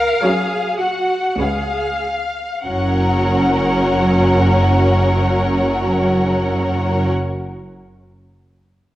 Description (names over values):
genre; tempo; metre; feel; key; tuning
classical, slow romantic movement for string orchestra; 44-56 BPM; 3/4; rubato; F# major; A4 = 440 Hz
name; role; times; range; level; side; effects
rich studio violin section; melody; 0.0-7.1 s; E#5 to F#5; -22 LUFS; left 2 dB; none
clear studio cello section; bass; 0.0-7.1 s; F#2 to A#4; -23 LUFS; right 1 dB; none
rich studio double bass section; bass; 0.0-7.1 s; F#1 to C#2; -19 LUFS; right 1 dB; none
rich studio violin section; second line; 0.2-7.1 s; A#4 to C#5; -22 LUFS; left 2 dB; none
rich studio viola section; accompaniment; 0.2-7.1 s; F#3 to C#4; -20 LUFS; right 1 dB; none
room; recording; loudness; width
wet recital hall reverb, RT60 1.7 s; worn, warbling old tape, cassette tape, warbly pitch drift; -15 LUFS; side -15 dB against mid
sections
0.0-2.7 A section; 2.7-6.3 B section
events
slowing down 0.0-2.7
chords
0.0 F#; 1.4 C#7; 2.7 F#